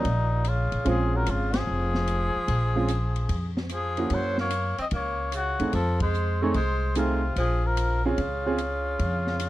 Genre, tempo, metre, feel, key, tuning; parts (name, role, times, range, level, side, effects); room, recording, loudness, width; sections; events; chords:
jazz, small-group swing and bop; 148 BPM; 4/4; swing 67% on 8ths; Bb minor; A4 = 441 Hz
trumpet with cup mute; melody; 0.0-9.5 s; Eb4 to Eb5; -30 LUFS; left 3 dB
clear tenor saxophone; second line; 0.0-9.5 s; Bb2 to C4; -32 LUFS; right 2 dB
clear grand piano; accompaniment; 0.0-8.6 s; Ab3 to Ab4; -28 LUFS; right 3 dB
upright bass; bass; 0.0-9.5 s; F1 to Gb2; -27 LUFS; equal
open jazz drum kit; drums; 0.0-9.5 s; hi-hat, kick drum, ride cymbal, snare drum; -34 LUFS; equal
small room ambience; dry, close 1970s-style studio recording; -23 LUFS; side -16 dB against mid
0.0-9.5 A section
band accent 1.5, 5.9
0.0 Eb7sus2; 0.9 Bbm9; 4.1 Gb7; 5.7 F7#9; 7.4 Bbm